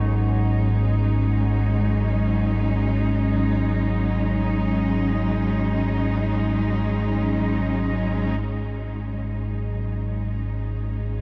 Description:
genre	dark ambient drone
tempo	free time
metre	none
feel	none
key	G# minor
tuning	A4 = 440 Hz
part	dark symphonic cello section	sustained chords	0.0-11.2 s	F#3 to D#4	-27 LUFS	equal	none
part	tubular bells	arpeggios	0.0-8.4 s	C#4 to F#4	-45 LUFS	equal	none
part	deep rumbling drone	drone	0.0-11.2 s	G#1 to G#2	-25 LUFS	equal	built-in reverb, subtle chorus
part	bronze singing bowl	texture	0.0-11.2 s	G#3 to B4	-48 LUFS	equal	none
room	moderate huge ambient reverb, RT60 8.3 s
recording	none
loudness	-23 LUFS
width	mono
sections	0.0-8.4 A section; 8.4-11.2 B section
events	none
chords	0.0 G#5

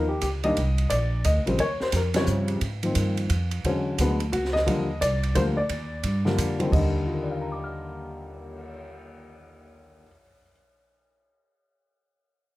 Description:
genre	jazz piano trio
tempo	176 BPM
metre	3/4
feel	swing 64% on 8ths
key	Eb major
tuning	A4 = 440 Hz
part	dark upright piano	melody	0.0-10.5 s	Eb2 to F6	-26 LUFS	left 1 dB	none
part	upright bass	bass	0.0-10.0 s	Bb1 to Ab2	-26 LUFS	equal	none
part	open jazz drum kit	drums	0.2-8.7 s	crash cymbal, cymbal swell, hi-hat, kick drum, ride cymbal, snare drum	-33 LUFS	right 3 dB	none
room	little or no reverb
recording	none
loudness	-22 LUFS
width	side -17 dB against mid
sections	0.0-6.7 A section; 6.7-8.8 B section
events	band accent 2.1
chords	0.0 Gm(b13); 0.6 Cm7; 1.6 Eb13; 2.6 Ab6; 3.6 E13; 4.7 Ebmaj7

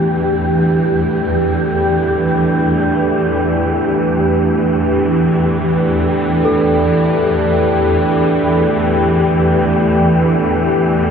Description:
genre	dark ambient drone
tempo	free time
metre	none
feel	none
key	unclear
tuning	A4 = 440 Hz
part	deep dark ambient pad	sustained chords	0.0-11.1 s	E3 to B4	-14 LUFS	equal	chorus, built-in reverb
part	gamelan-type bronze metallophone	arpeggios	0.0-11.1 s	B3 to A4	-22 LUFS	left 1 dB	ping-pong delay
part	swarming drone	drone	0.0-11.1 s	E2 to E3	-18 LUFS	equal	built-in reverb
part	wind-like tuned noise texture	texture	0.0-11.1 s	G4	-21 LUFS	equal	built-in reverb
room	wet huge ambient reverb, RT60 8.4 s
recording	dark, warm production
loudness	-12 LUFS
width	side -7 dB against mid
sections	0.0-11.1 A section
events	fade-in on synth drone 0.0-11.1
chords	0.0 G69/E

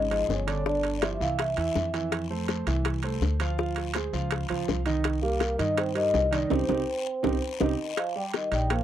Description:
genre	Afro-Cuban jazz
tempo	164 BPM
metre	4/4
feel	straight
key	C minor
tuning	A4 = 438 Hz
part	vibraphone with soft mallets	melody	0.0-1.9, 5.2-8.8 s	Bb4 to G5	-29 LUFS	left 2 dB	none
part	trombone with cup mute	second line	0.0-1.9, 5.2-8.8 s	Eb3 to F4	-34 LUFS	right 1 dB	none
part	warm concert grand piano	accompaniment	0.0-8.8 s	D3 to F5	-31 LUFS	right 4 dB	none
part	upright bass	bass	0.0-8.8 s	G1 to G2	-30 LUFS	equal	none
part	timbales	percussion	0.1-8.8 s	none	-33 LUFS	right 11 dB	none
part	bongos	percussion	0.3-8.8 s	none	-31 LUFS	left 8 dB	none
part	guiro	percussion	0.3-8.8 s	none	-42 LUFS	left 11 dB	none
room	light reverb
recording	dry, close 1970s-style studio recording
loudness	-25 LUFS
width	side -11 dB against mid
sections	0.0-8.0 A section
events	band accent 6.5-8.0; drum fill 7.2-8.0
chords	0.0 Db; 0.7 G5; 1.4 C; 2.1 Fmaj7; 3.6 Dm7b5; 4.3 Dbadd9; 5.0 Cm7; 8.0 Ebadd9

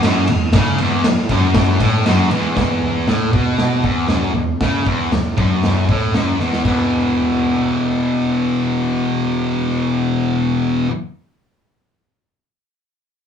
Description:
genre	garage rock duo or trio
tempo	118 BPM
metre	4/4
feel	straight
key	unclear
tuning	A4 = 440 Hz
part	thick fuzz guitar	riff	0.0-10.9 s	E2 to E3	-16 LUFS	left 1 dB	distortion
part	raw garage drum kit	drums	0.0-6.8 s	crash cymbal, kick drum, ride cymbal, snare drum, toms	-19 LUFS	right 1 dB	none
room	moderate studio ambience, RT60 0.5 s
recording	band playing live in one room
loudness	-15 LUFS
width	side -8 dB against mid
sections	0.0-2.6 A section; 2.6-6.6 B section; 6.6-10.7 C section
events	drum fill 6.4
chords	0.0 E5

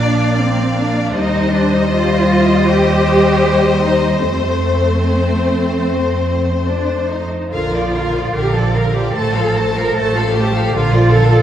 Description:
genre	classical, slow romantic movement for string orchestra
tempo	75 BPM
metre	4/4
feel	uneven beats, rubato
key	Bb major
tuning	A4 = 440 Hz
part	rich chamber violin section	melody	0.0-11.4 s	C5 to A5	-24 LUFS	left 3 dB	none
part	rich chamber violin section	second line	0.0-11.4 s	F4 to D5	-20 LUFS	left 4 dB	none
part	rich studio viola section	accompaniment	0.0-11.4 s	D3 to Bb3	-19 LUFS	left 1 dB	none
part	warm chamber double bass section	bass	0.0-11.4 s	A1 to F2	-18 LUFS	right 2 dB	none
part	warm studio cello section	bass	0.0-11.4 s	C4 to Bb4	-18 LUFS	right 2 dB	none
room	wet scoring stage reverb, RT60 2.0 s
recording	heard from further back in the room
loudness	-13 LUFS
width	side -10 dB against mid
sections	0.0-11.4 A section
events	none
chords	0.0 Bb; 1.1 Cm/Eb; 4.2 F; 7.5 Bb; 9.2 F/A; 10.7 Bb

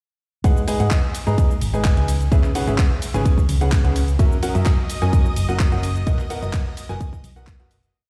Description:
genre	piano house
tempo	128 BPM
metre	4/4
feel	straight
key	B major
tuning	A4 = 440 Hz
part	warm concert grand piano	riff	0.4-7.7 s	B2 to A#5	-28 LUFS	equal	sidechain pumping, dub echo
part	hollow-body short-scale fingered electric bass	bass	0.4-7.9 s	F#1 to G#2	-23 LUFS	equal	sidechain pumping
part	electronic kick drum	drums	0.4-7.6 s	none	-20 LUFS	equal	none
part	house drum kit	drums	0.4-7.9 s	handclaps, hi-hat, ride cymbal, shaker	-33 LUFS	equal	none
part	string machine, violins	sustained chords	4.2-8.0 s	D#5 to D#6	-36 LUFS	equal	ensemble chorus, sidechain pumping
room	digital ambience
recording	played on a big sound system in a bare room, stone room reverb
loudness	-19 LUFS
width	mono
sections	0.4-7.9 drop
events	drop 0.4-7.9; fade-out 5.4-7.9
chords	0.4 G#m7; 2.1 C#m7; 4.2 F#7; 6.1 Bmaj7

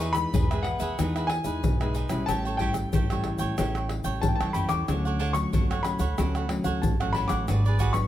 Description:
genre	samba and choro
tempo	92 BPM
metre	4/4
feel	straight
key	unclear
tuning	A4 = 436 Hz
part	warm concert grand piano	melody	0.0-8.1 s	F#5 to D6	-32 LUFS	left 3 dB	none
part	cavaquinho	accompaniment	0.0-8.0 s	D4 to G5	-33 LUFS	right 4 dB	none
part	nylon-string guitar	accompaniment	0.0-8.1 s	G#2 to E4	-32 LUFS	left 2 dB	none
part	upright bass	bass	0.0-8.0 s	G#1 to A2	-29 LUFS	right 1 dB	none
part	egg shaker, pandeiro, tamborim and surdo	percussion	0.0-8.1 s	none	-28 LUFS	left 1 dB	none
room	light reverb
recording	close, detailed microphones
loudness	-24 LUFS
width	side -12 dB against mid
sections	0.0-8.1 A section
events	none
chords	0.0 Emaj7; 2.3 A7; 4.9 Dmaj7; 7.5 G#m7b5

